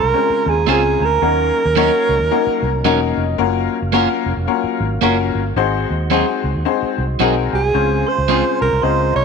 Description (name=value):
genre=soul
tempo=110 BPM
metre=4/4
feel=swing 61% on 8ths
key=Db major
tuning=A4 = 440 Hz
part: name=breathy alto saxophone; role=melody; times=0.0-3.2, 7.5-9.2 s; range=Ab4 to Db5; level=-18 LUFS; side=right 4 dB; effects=none
part: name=glockenspiel with soft plastic mallets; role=second line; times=0.0-3.2, 7.5-9.2 s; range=Ab5 to Db6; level=-24 LUFS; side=right 14 dB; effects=slapback echo
part: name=percussive tonewheel organ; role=sustained chords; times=0.0-9.2 s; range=Db3 to F5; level=-28 LUFS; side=equal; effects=fast rotary speaker, chorus vibrato
part: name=vintage muted fingered electric bass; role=bass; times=0.0-9.2 s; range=Fb1 to Eb2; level=-21 LUFS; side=right 1 dB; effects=none
part: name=clear upright piano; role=accompaniment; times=0.1-9.2 s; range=Ab3 to Bb5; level=-19 LUFS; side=left 13 dB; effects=none
part: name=electric guitar at the edge of break-up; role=stabs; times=0.7-8.4 s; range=Gb3 to C5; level=-22 LUFS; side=right 13 dB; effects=none
room=moderate echo chamber reverb, RT60 2.4 s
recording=1960s-style stereo with parts hard left and right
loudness=-14 LUFS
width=side -5 dB against mid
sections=0.0-9.2 A section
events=upright piano fill 2.3-3.4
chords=0.0 Dbmaj7; 1.2 Ebm7; 3.4 Gbmaj7; 5.6 Ab7; 7.7 Dbmaj7